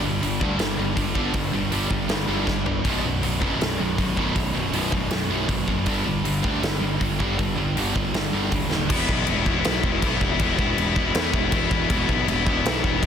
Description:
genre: heavy metal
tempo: 159 BPM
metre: 4/4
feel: straight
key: unclear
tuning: A4 = 439 Hz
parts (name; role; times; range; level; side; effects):
- high-gain distorted guitar; riff; 0.0-8.9 s; B1 to G3; -28 LUFS; right 9 dB; distortion
- high-gain distorted guitar; riff; 0.0-13.1 s; B1 to E4; -27 LUFS; right 1 dB; distortion
- scooped high-gain guitar; riff; 0.0-13.1 s; B1 to E4; -28 LUFS; left 10 dB; distortion
- fuzz picked electric bass; bass; 0.0-13.1 s; B0 to E2; -27 LUFS; equal; overdrive
- big rock drum kit; drums; 0.2-13.1 s; crash cymbal, hi-hat, kick drum, snare drum, toms; -26 LUFS; equal; soft clipping on snare
room: light reverb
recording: dense, heavily limited modern master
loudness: -20 LUFS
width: side -8 dB against mid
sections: 0.0-8.9 A section; 8.9-13.1 B section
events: drum fill 2.5-2.9, 8.7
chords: 0.0 G5; 2.9 B5; 5.9 G5; 8.9 Em

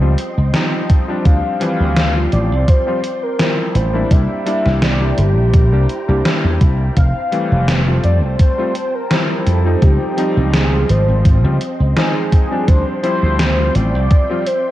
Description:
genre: vaporwave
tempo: 84 BPM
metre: 4/4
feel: swing 54% on 16ths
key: unclear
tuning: A4 = 439 Hz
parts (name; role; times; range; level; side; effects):
- warm velvety synth lead; melody; 0.0-14.7 s; G4 to F5; -21 LUFS; equal; chorus, tape echo
- warm electric grand piano; accompaniment; 0.0-14.4 s; E3 to G4; -21 LUFS; left 2 dB; wide subtle chorus, tape echo
- soft string machine; sustained chords; 0.0-14.7 s; C4 to C6; -27 LUFS; equal; ensemble chorus, vintage 12-bit sampler grit
- slap bass; bass; 0.0-14.1 s; F1 to F2; -15 LUFS; equal; none
- gated 80s digital drum machine; drums; 0.2-14.6 s; hi-hat, snare drum; -19 LUFS; right 1 dB; gated reverb, gated reverb snare
- electronic kick drum; drums; 0.9-14.3 s; none; -12 LUFS; equal; none
room: light reverb, digital ambience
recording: cassette tape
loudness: -13 LUFS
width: side -14 dB against mid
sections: 0.0-14.7 A section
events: none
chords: 0.0 Dbmaj9#11; 1.3 Dm11; 4.1 C7; 7.0 Fmaj9; 9.8 Dbmaj9#11; 12.7 Dm11

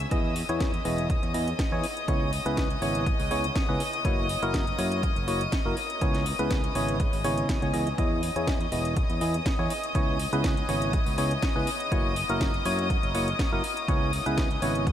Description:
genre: piano house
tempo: 122 BPM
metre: 4/4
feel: swing 53% on 16ths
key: C# dorian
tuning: A4 = 440 Hz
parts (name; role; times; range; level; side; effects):
- bright chamber string section; sustained chords; 0.0-14.9 s; D#5 to E6; -32 LUFS; left 3 dB; sidechain pumping
- overdriven fingered electric bass; bass; 0.0-14.9 s; E1 to F#2; -32 LUFS; equal; sidechain pumping
- house drum kit; drums; 0.0-14.9 s; hi-hat, snare drum; -36 LUFS; equal; overdrive
- percussive organ stab; riff; 0.1-14.9 s; C#3 to D#5; -29 LUFS; equal; wide subtle chorus, sidechain pumping, tape echo
- electronic kick drum; drums; 0.1-14.9 s; none; -28 LUFS; equal; none
room: moderate huge ambient reverb, RT60 8.5 s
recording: dreamy mix soaked in reverb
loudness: -24 LUFS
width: side -10 dB against mid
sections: 0.0-14.9 A section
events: none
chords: 0.1 Emaj7; 2.1 C#m7; 4.0 F#7; 5.8 C#m7; 8.0 Emaj7; 9.9 C#m7; 11.9 F#7; 13.6 C#m7

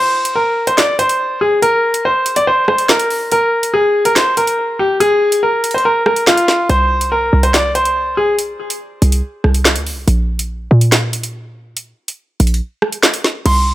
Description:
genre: hip hop, drill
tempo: 142 BPM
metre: 4/4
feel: half-time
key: unclear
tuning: A4 = 438 Hz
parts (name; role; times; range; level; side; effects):
- bright grand piano; melody; 0.0-8.3, 13.5-13.7 s; F4 to C6; -13 LUFS; equal; low-pass filter
- drill drum kit; drums; 0.3-13.6 s; crash cymbal, handclaps, hi-hat, rim click, snare drum; -16 LUFS; right 1 dB; none
- short 808-style bass; bass; 6.7-13.7 s; Bb1 to Bb2; -14 LUFS; equal; none
room: light reverb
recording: none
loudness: -12 LUFS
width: side -15 dB against mid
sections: 0.0-13.5 A section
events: break 0.0-6.7, 8.4-13.5; kick muted 12.6-13.5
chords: none

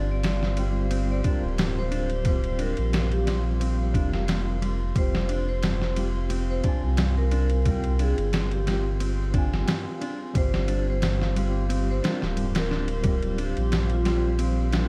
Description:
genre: trip hop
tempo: 89 BPM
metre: 4/4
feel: swing 53% on 16ths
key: unclear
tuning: A4 = 437 Hz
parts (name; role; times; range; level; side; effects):
- vibraphone with medium hard mallets; melody; 0.0-14.4 s; F4 to D5; -36 LUFS; equal; tape echo
- mellow tine electric piano; accompaniment; 0.0-14.9 s; G3 to Ab5; -35 LUFS; equal; tremolo, tape echo
- warbly tape-like pad; sustained chords; 0.0-14.9 s; G4 to C6; -42 LUFS; equal; chorus, built-in reverb, phaser, vintage 12-bit sampler grit
- mellow electric guitar; arpeggios; 0.0-14.9 s; G2 to D4; -37 LUFS; equal; vintage 12-bit sampler grit, tape echo
- round analog bass; bass; 0.0-14.9 s; D1 to C2; -28 LUFS; equal; tube saturation
- trip hop sampler-style drum kit; drums; 0.2-14.9 s; kick drum, ride cymbal, snare drum; -31 LUFS; equal; none
room: little or no reverb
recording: dark, warm production, vinyl crackle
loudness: -25 LUFS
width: mono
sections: 0.0-14.9 A section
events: none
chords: 0.0 Csus4; 5.0 Fmadd9; 10.3 Csus4

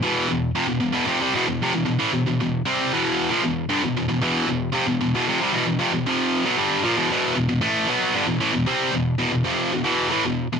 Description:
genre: metal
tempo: 115 BPM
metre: 4/4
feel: straight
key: E phrygian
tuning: A4 = 439 Hz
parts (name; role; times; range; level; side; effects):
- high-gain distorted guitar; solo; 0.0-10.6 s; E2 to C4; -19 LUFS; equal; distortion
room: light reverb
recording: none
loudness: -19 LUFS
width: side -6 dB against mid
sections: 0.0-7.1 A section; 7.1-10.6 B section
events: none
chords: 0.0 Em; 7.1 E5

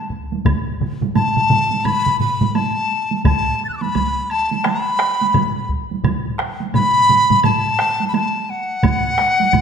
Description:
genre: japanese traditional, taiko drum ensemble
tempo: 86 BPM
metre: 4/4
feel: swing 60% on 16ths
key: unclear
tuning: A4 = 440 Hz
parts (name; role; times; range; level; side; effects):
- bright dizi; melody; 0.0-9.6 s; F#5 to A6; -17 LUFS; left 1 dB; none
- taiko ensemble; percussion; 0.1-9.6 s; none; -23 LUFS; equal; none
- taiko ensemble; percussion; 0.3-9.6 s; none; -24 LUFS; right 6 dB; none
- solo taiko drums; percussion; 0.5-9.6 s; none; -23 LUFS; right 5 dB; none
- taiko ensemble; percussion; 0.5-9.6 s; none; -24 LUFS; left 4 dB; none
- woodblock; percussion; 0.5-9.6 s; none; -33 LUFS; right 1 dB; none
room: wet scoring stage reverb, RT60 1.5 s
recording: none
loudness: -15 LUFS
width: side -6 dB against mid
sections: 0.0-9.6 A section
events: none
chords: none

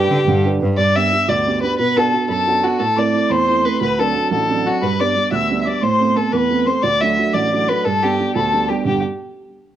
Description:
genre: celtic folk, Celtic jig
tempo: 119 BPM (dotted quarters)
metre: 6/8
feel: straight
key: G major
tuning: A4 = 439 Hz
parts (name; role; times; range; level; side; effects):
- dark fiddle; melody; 0.0-9.0 s; F#4 to E5; -18 LUFS; left 1 dB; cassette tape, plate reverb
- breathy mellow mid whistle; second line; 0.0-9.0 s; F#5 to F#6; -26 LUFS; left 9 dB; plate reverb
- dark upright piano; accompaniment; 0.0-9.0 s; A1 to B4; -19 LUFS; right 5 dB; plate reverb
- rich cello; bass; 0.0-0.7 s; G2 to D3; -21 LUFS; left 2 dB; none
room: moderate small room reverb, RT60 0.5 s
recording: home recording on cassette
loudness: -15 LUFS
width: side -11 dB against mid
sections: 0.8-8.8 A section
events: none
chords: 0.0 G; 1.8 Bm; 2.8 Am; 3.8 D7; 4.8 G; 5.8 Amadd9; 6.8 D; 7.8 G

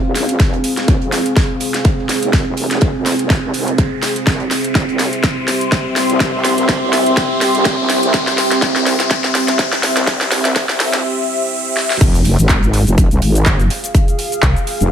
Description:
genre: bass house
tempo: 124 BPM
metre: 4/4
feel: swing 56% on 16ths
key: F harmonic minor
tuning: A4 = 440 Hz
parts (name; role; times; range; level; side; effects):
- dark analog pad; sustained chords; 0.2-14.9 s; C4 to F5; -23 LUFS; right 1 dB; chorus, sidechain pumping
- wobble bass; bass; 0.0-14.9 s; F1 to F2; -18 LUFS; equal; chorus, overdrive, sidechain pumping, high-pass filter
- riser and impact; sound effects; 0.1-13.9 s; none; -25 LUFS; equal; none
- warbly tape-like pad; texture; 0.0-14.9 s; C4 to C6; -19 LUFS; equal; chorus, built-in reverb, sidechain pumping
- compact cocktail drum kit; drums; 0.1-14.8 s; hi-hat, snare drum; -29 LUFS; right 3 dB; none
- big-room dance drum kit; drums; 0.2-14.9 s; crash cymbal, handclaps, hi-hat, shaker, snare drum; -19 LUFS; equal; overdrive, high-pass filter on snare, studio reverb, high-pass filter on hats, high-pass filter on cymbals, high-pass filter on perc
- electronic kick drum; drums; 0.4-14.5 s; none; -15 LUFS; equal; overdrive, studio reverb
- metallic FM bass; bass; 14.4-14.5 s; C2; -15 LUFS; equal; tube saturation, sidechain pumping
room: light reverb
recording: high-pass filter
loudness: -13 LUFS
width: side -8 dB against mid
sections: 0.0-12.0 A section; 12.0-14.9 B section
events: build-up 0.0-12.0; drum fill 0.0-11.0, 11.8; filter sweep on analog synth pad 0.0-12.0; filter sweep 0.0-12.0; riser 0.1-12.0; drop 12.0-14.9; impact 12.0-13.9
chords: 0.0 Fm; 4.3 C; 12.0 Fm

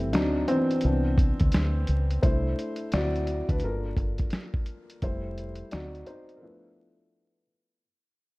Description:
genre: lo-fi hip hop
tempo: 86 BPM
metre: 4/4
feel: swing 60% on 16ths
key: unclear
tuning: A4 = 440 Hz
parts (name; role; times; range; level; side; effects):
- felt-muted upright piano; accompaniment; 0.0-7.8 s; E3 to D5; -29 LUFS; left 1 dB; low-pass filter
- deep dub fingered electric bass; bass; 0.0-6.0 s; F1 to D2; -28 LUFS; equal; none
- lo-fi sampler-style drum kit; drums; 0.1-6.4 s; hi-hat, kick drum, snare drum; -27 LUFS; equal; vintage 12-bit sampler grit
room: light reverb, digital ambience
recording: dark, warm production, vinyl crackle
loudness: -24 LUFS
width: side -22 dB against mid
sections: 0.0-2.2 A section; 2.2-7.8 B section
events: felt piano solo 0.0-2.2, 2.2-7.8; fade-out 2.2-7.8; filter sweep on felt piano 2.2-7.8; break 6.4-7.8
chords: 0.1 D7b9; 0.8 Cmaj9; 2.2 C6; 2.9 D7; 3.6 Gm7; 5.0 Fmaj7; 5.7 D7b9; 6.4 Dm69/F

